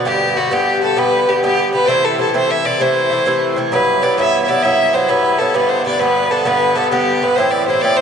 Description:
celtic folk, Celtic slide; 131 BPM (dotted quarters); 12/8; straight; A dorian; A4 = 440 Hz
Irish bouzouki; accompaniment; 0.0-8.0 s; G2 to G4; -16 LUFS; right 1 dB
bright fiddle; melody; 0.1-8.0 s; F#4 to E5; -15 LUFS; left 1 dB; diffuse ambient delay
wet cathedral reverb, RT60 6.4 s; dreamy mix soaked in reverb, nothing above 10.3 kHz; -13 LUFS; side -7 dB against mid
0.0-3.7 A section; 3.7-8.0 B section
0.1 G; 1.9 Am; 3.7 Emadd9; 5.5 G; 7.4 Am

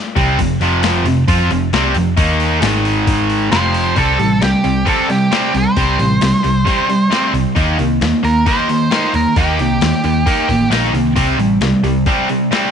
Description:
classic rock; 133 BPM; 4/4; straight; A4 = 442 Hz
distorted electric guitar; riff; 0.2-12.7 s; F2 to F4; -15 LUFS; equal; overdrive
hollow-body short-scale picked electric bass; bass; 0.2-12.0 s; F1 to F2; -18 LUFS; equal
boom bap sampler-style drum kit; drums; 0.2-12.6 s; hi-hat, kick drum, snare drum; -20 LUFS; left 3 dB; overdrive
octave-fuzz lead guitar; melody; 3.5-10.7 s; G4 to C5; -19 LUFS; right 2 dB; distortion
light reverb, digital ambience; 1960s-style stereo, nothing above 10.9 kHz; -12 LUFS; side -7 dB against mid
0.0-4.0 A section; 4.0-12.7 B section
0.4 F5; 2.2 Eb5; 2.6 Ab5; 3.5 F5; 4.0 C5; 7.6 Eb; 11.2 C5

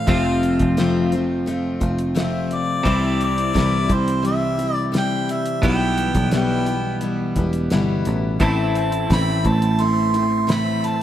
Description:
folk rock and heartland rock; 87 BPM; 4/4; straight; A minor; A4 = 440 Hz
mellow harmonica; melody; 0.0-11.0 s; C5 to C6; -24 LUFS; right 1 dB
picked steel-string acoustic guitar; accompaniment; 0.0-11.0 s; F2 to F4; -23 LUFS; left 5 dB
twelve-string electric guitar; riff; 0.0-11.0 s; F2 to F4; -24 LUFS; right 3 dB; spring reverb
picked electric bass; bass; 0.1-10.8 s; E1 to C2; -23 LUFS; equal
cloth-damped thuddy drum kit; drums; 0.1-11.0 s; hi-hat, kick drum, snare drum; -25 LUFS; equal
tonewheel organ; sustained chords; 8.4-11.0 s; C4 to C5; -35 LUFS; right 2 dB; slow rotary speaker, overdrive, chorus vibrato
light reverb, small room ambience; rough home demo mix; -17 LUFS; side -11 dB against mid
0.0-11.0 A section
0.1 F; 2.9 C; 5.6 Em/B; 8.4 Am

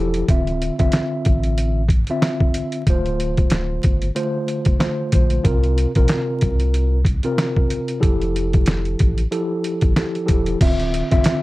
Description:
hip hop, boom-bap hip-hop; 93 BPM; 4/4; swing 56% on 16ths; D minor; A4 = 440 Hz
mellow tine electric piano; accompaniment; 0.0-11.4 s; C3 to E5; -22 LUFS; equal; medium stereo tremolo, high-pass filter, low-pass filter
soft dub sub bass; bass; 0.0-11.2 s; D1 to C2; -21 LUFS; equal
trip hop sampler-style drum kit; drums; 0.1-11.4 s; crash cymbal, hi-hat, kick drum, snare drum; -18 LUFS; equal; vintage 12-bit sampler grit
light reverb; dark, warm production, vinyl crackle; -17 LUFS; side -19 dB against mid
0.0-10.6 A section
break 0.0
0.3 Dm9; 2.9 Bbmaj9/D (rootless); 5.4 C7sus4; 8.0 Fmaj9; 10.6 Dm9

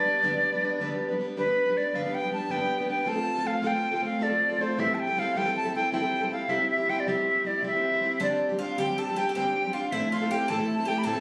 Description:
celtic folk; 106 BPM (dotted quarters); 9/8; straight; G mixolydian; A4 = 440 Hz
bright reedy wooden flute; melody; 0.0-11.2 s; B4 to B5; -29 LUFS; equal
Irish bouzouki; second line; 0.0-1.2, 8.2-11.2 s; D4 to A4; -36 LUFS; equal
picked plugged-in steel-string acoustic guitar; accompaniment; 0.0-11.2 s; G2 to B4; -32 LUFS; equal
moderate studio reverb, RT60 0.8 s; recorded on a phone in the room, studio reverb; -27 LUFS; mono
0.0-1.4 A section; 1.4-11.2 B section
0.0 G; 3.1 F/A; 4.8 Am7; 6.5 C; 8.2 Gsus4; 9.9 Am

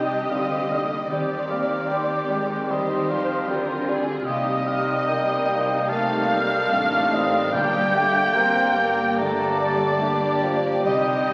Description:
classical, slow romantic movement for symphony orchestra; 74 BPM; 4/4; rubato; C minor, G minor from 4.3 s; A4 = 440 Hz
warm studio violin section; melody; 0.0-11.3 s; G4 to Bb4; -36 LUFS; equal
concert flute; second line; 0.0-11.3 s; C6 to G6; -29 LUFS; equal
mellow clarinet; second line; 0.0-11.3 s; G3 to Eb4; -35 LUFS; equal
warm oboe; second line; 0.0-11.3 s; Bb4 to Bb5; -32 LUFS; equal
warm symphonic violin section; second line; 0.0-11.3 s; C5 to G5; -29 LUFS; equal
mellow bassoon; accompaniment; 0.0-11.3 s; F3 to Bb3; -31 LUFS; equal
warm symphonic viola section; accompaniment; 0.0-11.3 s; F3 to F4; -33 LUFS; equal
warm French horn section; sustained chords; 0.0-11.3 s; G3 to G4; -32 LUFS; equal
concert harp; arpeggios; 0.0-11.3 s; G2 to G4; -38 LUFS; equal
rich symphonic double bass section; bass; 0.0-11.3 s; G1 to Eb2; -42 LUFS; equal
warm symphonic cello section; bass; 0.0-11.3 s; G2 to Eb3; -36 LUFS; equal
timpani; percussion; 7.5-8.7 s; G2; -36 LUFS; equal
wet scoring stage reverb, RT60 1.9 s; very old 78 rpm record, vinyl crackle; -22 LUFS; mono
0.0-11.3 A section
0.0 Cm; 1.1 Cm/Eb; 4.3 Cm7; 7.5 Gm

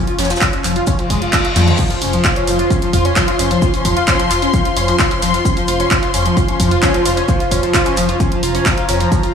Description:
driving peak-time techno; 131 BPM; 4/4; straight; A4 = 441 Hz
overdriven synth lead; riff; 0.0-9.3 s; F3 to F4; -18 LUFS; left 1 dB; distortion, tube saturation, analog chorus, sidechain pumping, analog delay
soft brush drum kit; drums; 0.1-9.3 s; hi-hat, shaker, snare drum; -28 LUFS; left 1 dB; sidechain pumping on hats, high-pass filter on hats, high-pass filter on snare, sidechain pumping on perc, high-pass filter on perc, high-pass filter on room
techno drum kit; drums; 0.1-9.3 s; crash cymbal, handclaps, hi-hat, toms; -20 LUFS; right 1 dB; sidechain pumping on hats, sidechain pumping on toms, sidechain pumping on cymbals
dark detuned saw bass; bass; 0.2-9.0 s; F1 to F2; -19 LUFS; equal; sidechain pumping
electronic kick drum; drums; 0.4-9.2 s; -18 LUFS; equal
reverse cymbal and impact; sound effects; 1.0-3.6 s; -24 LUFS; left 2 dB
rich studio string section; texture; 1.8-9.3 s; F4 to C6; -19 LUFS; left 1 dB; sidechain pumping
moderate lush hall reverb, RT60 2.3 s; dreamy mix soaked in reverb, studio reverb; -12 LUFS; side -7 dB against mid
0.0-1.8 A section; 1.8-9.3 B section
reverse cymbal 1.0-1.8; drum fill 1.6; drop 1.8-9.3; impact 1.8-3.6
0.0 N.C.; 1.8 F5

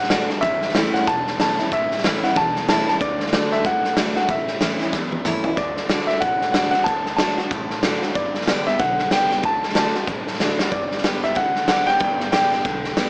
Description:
rockabilly; 187 BPM; 4/4; swing 60% on 8ths; D major; A4 = 440 Hz
clear upright piano; melody; 0.0-12.9 s; D5 to A5; -24 LUFS; equal
picked steel-string acoustic guitar; accompaniment; 0.0-13.1 s; E2 to G4; -28 LUFS; equal
upright bass; bass; 0.0-13.1 s; E1 to E2; -37 LUFS; equal
raw garage drum kit; drums; 0.0-13.1 s; hi-hat, kick drum, snare drum, toms; -25 LUFS; equal
moderate studio ambience, RT60 0.4 s; small speaker sound; -21 LUFS; mono
0.0-5.6 A section; 5.6-13.1 A section
drum fill 4.9-5.6, 10.4-10.7
0.4 A; 3.0 D; 4.3 A; 5.6 D; 8.2 G; 9.4 D; 10.7 G

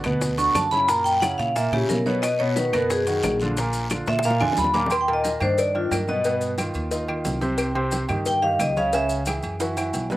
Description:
Afro-Cuban jazz; 179 BPM; 4/4; straight; A4 = 439 Hz
warm grand piano; accompaniment; 0.0-10.2 s; A#2 to Db5; -27 LUFS; right 1 dB; slapback echo
upright bass; bass; 0.0-10.2 s; A#1 to B2; -29 LUFS; equal
bongos and cowbell; percussion; 0.0-10.2 s; -31 LUFS; left 3 dB
claves; percussion; 0.0-9.9 s; -35 LUFS; left 4 dB
congas; percussion; 0.0-10.2 s; -34 LUFS; left 1 dB
guiro; percussion; 0.0-4.9 s; -39 LUFS; left 2 dB
maracas; percussion; 0.0-10.2 s; -37 LUFS; left 2 dB
timbales and agogo bells; percussion; 0.0-10.2 s; -33 LUFS; right 4 dB; slapback echo
vibraphone with medium hard mallets; melody; 0.4-9.0 s; F4 to D6; -22 LUFS; equal; slapback echo
little or no reverb; recorded outdoors, with no room sound; -20 LUFS; side -16 dB against mid
0.0-4.9 A section; 4.9-10.2 A section
vibraphone solo 0.0-10.2; drum fill 4.1-4.9, 9.6-10.2
0.0 Gmaj7 (rootless); 0.9 F#7; 2.2 B6; 3.6 A#; 4.9 Ebmaj7; 6.3 Gaug7; 7.6 Cm; 8.9 Dbm; 9.6 Bsus4

